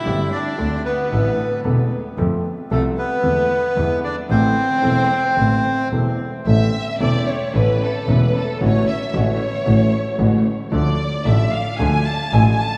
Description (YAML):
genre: tango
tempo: 113 BPM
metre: 4/4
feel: rubato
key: A minor, A major from 6.5 s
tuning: A4 = 440 Hz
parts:
  - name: bandoneon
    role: melody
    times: 0.0-5.9 s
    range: A3 to E5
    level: -25 LUFS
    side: equal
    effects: none
  - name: rich studio violin section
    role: second line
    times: 0.0-12.8 s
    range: A3 to A5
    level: -26 LUFS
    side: equal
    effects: none
  - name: warm upright piano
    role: accompaniment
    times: 0.0-12.6 s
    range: E1 to A4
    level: -24 LUFS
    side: equal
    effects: none
  - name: warm double bass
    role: bass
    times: 0.1-12.6 s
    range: E1 to F2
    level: -23 LUFS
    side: equal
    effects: none
room: wet cathedral reverb, RT60 5.8 s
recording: in a vast, echoing space, studio reverb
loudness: -19 LUFS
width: mono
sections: 0.0-6.5 A section; 6.5-12.8 B section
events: violin section solo 6.5-12.8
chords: 0.1 Gsus4; 1.1 Am; 2.2 F; 3.2 Esus4; 3.8 E; 4.3 Am; 6.5 A; 8.6 F#m7/A; 10.7 Dm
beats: | 0.06 0.59 1.12 1.65 | 2.17 2.70 3.23 3.76 | 4.29 4.83 5.37 5.92 | 6.46 7.00 7.54 8.08 | 8.61 9.14 9.67 10.20 | 10.73 11.26 11.80 12.33